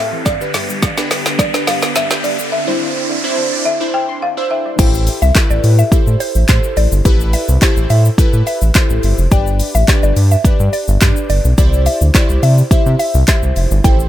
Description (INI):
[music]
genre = dance-pop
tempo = 106 BPM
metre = 4/4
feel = straight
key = A minor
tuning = A4 = 442 Hz
[part]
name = folk marimba with medium hard mallets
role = melody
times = 0.0-4.8 s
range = D5 to G5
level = -21 LUFS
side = left 1 dB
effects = dub echo
[part]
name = glassy digital keys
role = accompaniment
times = 0.0-14.1 s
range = C4 to E5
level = -20 LUFS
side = equal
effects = chorus, sidechain pumping
[part]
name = tight sequenced synth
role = arpeggios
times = 0.0-4.8 s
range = G2 to G6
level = -29 LUFS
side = right 1 dB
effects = chorus, sidechain pumping, dub echo
[part]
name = riser and downlifter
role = sound effects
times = 0.0-3.7 s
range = none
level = -22 LUFS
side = equal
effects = none
[part]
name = string machine, violas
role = sustained chords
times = 0.3-4.8, 13.8-14.1 s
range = C3 to G4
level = -25 LUFS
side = right 1 dB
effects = ensemble chorus, sidechain pumping
[part]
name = deep house drum kit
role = drums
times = 0.3-14.1 s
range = crash cymbal, handclaps, hi-hat, kick drum, shaker, snare drum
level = -14 LUFS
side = equal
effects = none
[part]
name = mallet-like synth pluck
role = melody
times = 4.8-14.1 s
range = C5 to G5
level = -21 LUFS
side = left 1 dB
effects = chorus, phaser, dub echo
[part]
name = round analog bass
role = bass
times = 4.8-14.1 s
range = F1 to C3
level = -12 LUFS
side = equal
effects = sidechain pumping
[sound]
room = light reverb, digital ambience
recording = echo-heavy mix, high-pass filter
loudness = -11 LUFS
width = side -12 dB against mid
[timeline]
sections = 0.0-4.8 A section; 4.8-14.1 B section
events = build-up 0.0-4.8; drum fill 0.0-2.5; riser 0.0-4.8; filter sweep 0.0-4.8; drop 4.8-14.1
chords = 0.3 G; 2.5 Cadd9; 4.8 Am7; 9.3 G; 11.6 Cadd9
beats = | 0.26 0.83 1.39 1.96 | 2.52 3.09 3.66 4.22 | 4.79 5.35 5.92 6.49 | 7.05 7.62 8.18 8.75 | 9.32 9.88 10.45 11.01 | 11.58 12.15 12.71 13.28 | 13.85